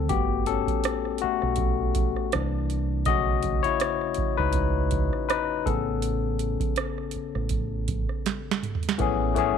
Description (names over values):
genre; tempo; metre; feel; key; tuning
R&B, neo-soul; 81 BPM; 4/4; swing 53% on 16ths; A major; A4 = 440 Hz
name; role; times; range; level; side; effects
barky tine electric piano; accompaniment; 0.0-9.6 s; C#3 to D#5; -26 LUFS; left 12 dB; none
deep dub fingered electric bass; bass; 0.0-9.5 s; G1 to C#2; -28 LUFS; right 1 dB; none
booming analog drum machine; drums; 0.1-9.6 s; hi-hat, kick drum, rim click, snare drum, toms; -29 LUFS; right 5 dB; none
room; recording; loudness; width
digital ambience; 1960s-style stereo; -24 LUFS; side -7 dB against mid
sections
0.0-9.0 A section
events
tine electric piano solo 0.0-9.0; drum fill 8.3-9.0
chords
0.1 Gmaj9; 2.3 C9; 3.1 B9; 5.7 Amaj9